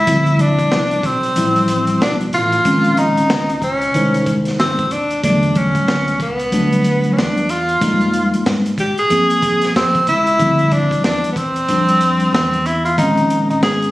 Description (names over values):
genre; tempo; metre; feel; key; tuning
hip hop, jazz-hop; 93 BPM; 4/4; swing 60% on 16ths; unclear; A4 = 439 Hz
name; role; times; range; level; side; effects
warm tenor saxophone; melody; 0.0-13.9 s; B3 to Ab4; -16 LUFS; equal; none
upright bass; bass; 0.0-13.9 s; Eb1 to Ab2; -22 LUFS; equal; none
mellow tine electric piano; accompaniment; 0.1-13.9 s; D3 to C5; -18 LUFS; equal; medium stereo tremolo
crunchy breakbeat drum kit; drums; 0.1-13.9 s; hi-hat, kick drum, snare drum; -22 LUFS; equal; none
room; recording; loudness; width
light reverb, studio ambience; recorded on a phone in the room, studio reverb, vinyl crackle, compression; -13 LUFS; side -17 dB against mid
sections
0.1-13.9 A section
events
none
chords
0.1 Dm11; 2.7 Bbm11; 5.2 Em11; 7.8 Fm11; 10.4 Dm11; 13.0 Bbm11